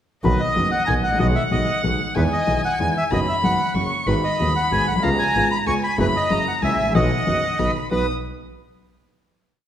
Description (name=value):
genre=tango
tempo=188 BPM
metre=3/4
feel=rubato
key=B major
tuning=A4 = 440 Hz
part: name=bandoneon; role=melody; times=0.2-8.1 s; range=B4 to C#6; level=-23 LUFS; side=equal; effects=none
part: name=rich violin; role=second line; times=0.2-8.1 s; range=D#5 to D#6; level=-24 LUFS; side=left 1 dB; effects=none
part: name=warm concert grand piano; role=accompaniment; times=0.2-8.0 s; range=D#1 to F#4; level=-23 LUFS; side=left 2 dB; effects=none
part: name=rich double bass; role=bass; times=0.2-8.1 s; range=F#1 to E2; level=-25 LUFS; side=right 2 dB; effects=none
room=wet recital hall reverb, RT60 1.5 s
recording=recorded in a church or concert hall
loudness=-18 LUFS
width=side -10 dB against mid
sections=0.3-7.9 A section; 7.9-8.9 final chord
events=none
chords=0.3 Bmaj7; 1.2 G#m7/B; 2.2 Emaj7; 3.1 B/F#; 3.8 F#; 4.1 G#m7; 5.0 C#7; 6.0 F#7sus4; 6.3 F#7; 6.9 B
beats=| 0.25 0.57 0.89 | 1.21 1.52 1.84 | 2.16 2.48 2.79 | 3.11 3.43 3.75 | 4.07 4.39 4.71 | 5.03 5.35 5.67 | 5.99 6.31 6.63 | 6.95 7.27 7.59 | 7.91